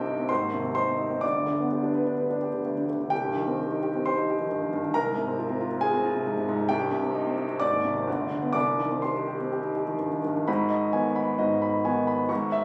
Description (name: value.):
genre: classical, virtuoso piano study.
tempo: 121-139 BPM.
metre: 4/4.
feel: rubato.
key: C minor.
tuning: A4 = 441 Hz.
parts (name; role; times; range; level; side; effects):
clear concert grand piano; solo; 0.0-12.6 s; G1 to D6; -27 LUFS; equal; none.
room: light reverb.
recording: recorded on a phone in the room, club reverb, compression, nothing above 10.6 kHz.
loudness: -27 LUFS.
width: mono.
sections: 0.0-10.5 A section; 10.5-12.6 B section.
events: none.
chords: 0.3 Ab; 1.2 G; 3.1 Cm; 5.0 Fm/C; 6.7 Cm; 7.6 Ab; 8.1 G; 8.5 Cm; 10.5 G#m.